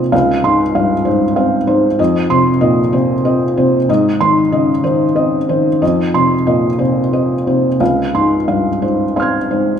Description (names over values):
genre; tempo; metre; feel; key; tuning
neoclassical minimalist piano; 57-65 BPM (dotted quarters); 6/8; rubato; F minor; A4 = 440 Hz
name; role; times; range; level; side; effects
felt-muted upright piano; solo; 0.0-9.8 s; Db2 to Ab6; -12 LUFS; equal; none
room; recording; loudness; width
wet recital hall reverb, RT60 1.3 s; minimal, uncompressed stereo recording; -12 LUFS; side -8 dB against mid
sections
0.0-9.8 A section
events
none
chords
0.1 Dbmaj7; 2.0 F5; 3.9 Ab; 5.8 F5; 7.8 Dbmaj7